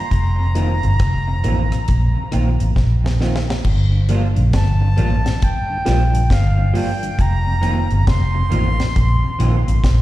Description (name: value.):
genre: roots reggae.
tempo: 68 BPM.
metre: 4/4.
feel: swing 63% on 16ths.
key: G minor.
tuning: A4 = 440 Hz.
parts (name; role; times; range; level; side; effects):
bright reedy jazz flute; melody; 0.0-9.8 s; F5 to C6; -26 LUFS; right 1 dB; dub echo, plate reverb, slapback echo.
mellow tonewheel organ; accompaniment; 0.0-9.8 s; F2 to F4; -27 LUFS; left 4 dB; slow rotary speaker, plate reverb, slapback echo.
vintage muted fingered electric bass; bass; 0.1-10.0 s; F1 to Bb1; -16 LUFS; equal; none.
deep reggae drum kit; drums; 0.1-10.0 s; crash cymbal, hi-hat, kick drum, rim click, snare drum; -21 LUFS; equal; none.
electric guitar through a small old amp; accompaniment; 0.6-9.6 s; Eb3 to F4; -27 LUFS; right 6 dB; analog chorus, dub echo, plate reverb, slapback echo.
room: little or no reverb.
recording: live gig heard through the venue's PA, recital hall reverb.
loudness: -15 LUFS.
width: side -16 dB against mid.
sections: 0.0-3.6 A section; 3.6-10.0 B section.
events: drum fill 2.8-3.6.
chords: 0.1 F7sus4; 3.6 Gm7; 7.2 F7sus4.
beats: | 0.11 1.00 1.88 2.77 | 3.65 4.53 5.42 6.30 | 7.19 8.07 8.95 9.84.